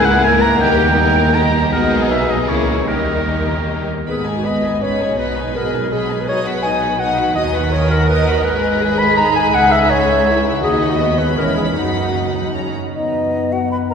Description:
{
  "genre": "classical, dramatic, fast romantic movement for symphony orchestra",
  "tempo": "149-169 BPM",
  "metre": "3/4",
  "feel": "rubato",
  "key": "G# minor, B major from 8.4 s",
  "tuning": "A4 = 441 Hz",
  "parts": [
    { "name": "rich symphonic violin section", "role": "melody", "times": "0.0-12.7 s", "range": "F#4 to D#6", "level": "-26 LUFS", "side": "left 4 dB", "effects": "none" },
    { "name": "clear oboe", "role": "second line", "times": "0.0-3.7 s", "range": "G#4 to A#5", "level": "-18 LUFS", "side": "right 2 dB", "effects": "none" },
    { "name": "warm symphonic violin section", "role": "second line", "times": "0.0-12.7 s", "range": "B3 to F#5", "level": "-22 LUFS", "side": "left 4 dB", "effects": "none" },
    { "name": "rich symphonic viola section", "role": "accompaniment", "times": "0.0-12.7 s", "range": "E3 to A#4", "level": "-23 LUFS", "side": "right 1 dB", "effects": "none" },
    { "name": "warm symphonic cello section", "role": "bass", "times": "0.0-12.7 s", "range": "C#2 to D#3", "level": "-23 LUFS", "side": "right 3 dB", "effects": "none" },
    { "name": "warm symphonic double bass section", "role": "bass", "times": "0.0-12.7 s", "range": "E1 to D#2", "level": "-23 LUFS", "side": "right 2 dB", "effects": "none" },
    { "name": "mellow clarinet", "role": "second line", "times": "4.1-13.9 s", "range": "D#4 to B5", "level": "-18 LUFS", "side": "left 2 dB", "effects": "none" },
    { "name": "concert flute", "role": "second line", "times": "12.9-13.9 s", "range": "D#5 to B5+22c", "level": "-20 LUFS", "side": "left 1 dB", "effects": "none" },
    { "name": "dark French horn section", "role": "sustained chords", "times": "12.9-13.9 s", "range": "B3", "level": "-22 LUFS", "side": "left 7 dB", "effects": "none" }
  ],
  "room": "wet cathedral reverb, RT60 5.1 s",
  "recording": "recorded in a church or concert hall",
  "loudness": "-14 LUFS",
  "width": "side -6 dB against mid",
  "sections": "0.0-4.1 A section; 4.1-12.9 B section",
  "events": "none",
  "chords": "0.0 A#m7b5/C#; 0.6 D#; 1.7 G#m/B; 2.5 A#dim/C#; 2.9 D#; 4.1 G#m; 5.2 G#m/B; 6.3 B; 7.4 B/D#; 8.4 G#m; 9.5 C#m7; 10.6 B/D#; 11.4 C#m7/E; 11.8 B/F#; 12.9 N.C."
}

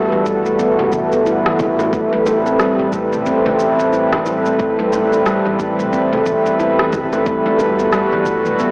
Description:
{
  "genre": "organic downtempo",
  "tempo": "90 BPM",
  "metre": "4/4",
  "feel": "swing 60% on 16ths",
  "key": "A dorian",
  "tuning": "A4 = 439 Hz",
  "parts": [
    { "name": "warbly tape-like pad", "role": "sustained chords", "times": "0.0-8.7 s", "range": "G3 to B4", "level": "-20 LUFS", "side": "equal", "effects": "chorus, built-in reverb, sidechain pumping" },
    { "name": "handpan", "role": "arpeggios", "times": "0.0-8.7 s", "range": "E3 to E4", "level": "-19 LUFS", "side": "equal", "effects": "digital delay" },
    { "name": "woody fretless electric bass", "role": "bass", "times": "0.0-8.7 s", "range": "G1 to E2", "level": "-34 LUFS", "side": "equal", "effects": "tube saturation, lush chorus" },
    { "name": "congas and bongos", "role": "percussion", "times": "0.1-8.7 s", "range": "none", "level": "-29 LUFS", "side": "equal", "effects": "none" },
    { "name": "deep house drum kit", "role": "drums", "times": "0.3-8.7 s", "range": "rim click, shaker, toms", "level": "-26 LUFS", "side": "equal", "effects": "soft clipping on snare" },
    { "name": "electronic kick drum", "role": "drums", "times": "0.3-8.4 s", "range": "none", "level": "-30 LUFS", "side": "equal", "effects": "none" }
  ],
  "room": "wet lush hall reverb, RT60 2.3 s",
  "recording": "blown-out, overdriven recording, overdrive, AM radio sound",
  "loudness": "-16 LUFS",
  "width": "mono",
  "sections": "0.0-8.7 A section",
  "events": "none",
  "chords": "0.0 Gmaj9; 1.9 Am9; 7.3 Gmaj9"
}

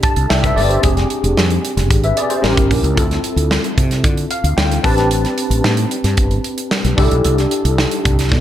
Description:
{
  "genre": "polished 1980s jazz-funk pop",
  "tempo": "112 BPM",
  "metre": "4/4",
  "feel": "straight",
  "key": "unclear",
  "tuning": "A4 = 439 Hz",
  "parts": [
    { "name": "tine electric piano", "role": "accompaniment", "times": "0.0-8.4 s", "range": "C4 to A5", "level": "-18 LUFS", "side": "left 1 dB", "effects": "fast stereo tremolo, ensemble chorus" },
    { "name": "modern studio drum kit", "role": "drums", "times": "0.0-8.4 s", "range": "hi-hat, kick drum, snare drum", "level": "-18 LUFS", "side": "equal", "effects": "gated reverb" },
    { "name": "mellow fretless electric bass", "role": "bass", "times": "0.2-8.4 s", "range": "F1 to D3", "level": "-17 LUFS", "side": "equal", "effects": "none" }
  ],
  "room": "small room reverb",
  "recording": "none",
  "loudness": "-13 LUFS",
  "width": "side -11 dB against mid",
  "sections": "0.0-8.4 A section",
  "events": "tine electric piano fill 0.0-0.8, 4.0-5.1",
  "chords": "0.0 C69; 0.8 Fm6; 2.4 A7b9; 3.0 Dm9; 4.8 Am11; 7.0 C69"
}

